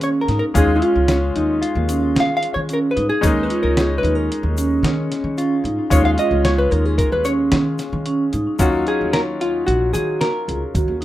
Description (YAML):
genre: progressive instrumental, band music in an uneven meter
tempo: 112 BPM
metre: 5/4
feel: straight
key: unclear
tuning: A4 = 440 Hz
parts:
  - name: vintage hollow-body jazz guitar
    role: melody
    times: 0.0-11.0 s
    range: F4 to F5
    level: -21 LUFS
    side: left 1 dB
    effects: none
  - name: mellow electric guitar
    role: second line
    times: 0.0-11.0 s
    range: Bb3 to F4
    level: -29 LUFS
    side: left 4 dB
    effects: ping-pong delay
  - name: bright grand piano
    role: accompaniment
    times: 0.0-11.0 s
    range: Gb3 to F4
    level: -25 LUFS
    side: left 2 dB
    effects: none
  - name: vibraphone with medium mallets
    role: arpeggios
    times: 0.0-11.0 s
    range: Db4 to Ab4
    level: -22 LUFS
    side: right 2 dB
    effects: ping-pong delay
  - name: upright bass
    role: bass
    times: 0.0-11.0 s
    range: Bb1 to Eb3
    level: -22 LUFS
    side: equal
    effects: none
  - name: dusty soul sampler-style drum kit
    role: drums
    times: 0.0-11.0 s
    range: hi-hat, kick drum, snare drum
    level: -22 LUFS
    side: equal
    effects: none
  - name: egg shaker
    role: percussion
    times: 0.0-10.9 s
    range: none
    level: -35 LUFS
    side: left 7 dB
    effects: none
room: little or no reverb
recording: rough home demo mix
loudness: -16 LUFS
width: side -14 dB against mid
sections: 0.0-8.6 A section; 8.6-11.0 B section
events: hollow-body jazz guitar solo 0.0-8.6; kick and snare drop out 8.1-8.6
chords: 0.0 Bbm7; 8.6 Ebm7